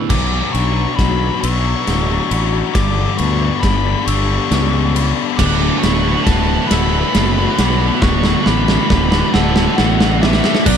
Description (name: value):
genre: post-rock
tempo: 45 BPM (dotted quarters)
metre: 6/8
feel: straight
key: D major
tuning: A4 = 440 Hz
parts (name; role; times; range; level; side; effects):
- bluesy overdriven lead guitar; melody; 0.0-10.8 s; D5 to D6; -23 LUFS; left 1 dB; distortion, analog delay
- rich studio string section; sustained chords; 0.0-10.8 s; F#3 to B5; -31 LUFS; left 1 dB; none
- glockenspiel with soft plastic mallets; arpeggios; 0.0-10.8 s; B5 to F#6; -32 LUFS; right 4 dB; analog delay
- twelve-string electric guitar; arpeggios; 0.0-10.7 s; D2 to B4; -23 LUFS; left 6 dB; analog delay
- thick fuzz guitar; riff; 0.0-0.1, 5.4-10.8 s; B2 to F#4; -20 LUFS; right 14 dB; distortion
- tight distorted guitar; riff; 0.1-10.8 s; D2 to B3; -21 LUFS; left 16 dB; distortion
- fuzz fingered electric bass; bass; 0.1-10.8 s; D1 to D2; -18 LUFS; equal; overdrive
- big rock drum kit; drums; 0.1-10.8 s; crash cymbal, kick drum, ride cymbal, snare drum; -18 LUFS; right 1 dB; none
room: small room ambience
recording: dark, warm production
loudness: -13 LUFS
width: side -8 dB against mid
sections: 0.1-10.7 A section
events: build-up 0.1-10.7; drum fill 0.1-10.7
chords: 0.1 Bm; 2.7 G; 5.4 D6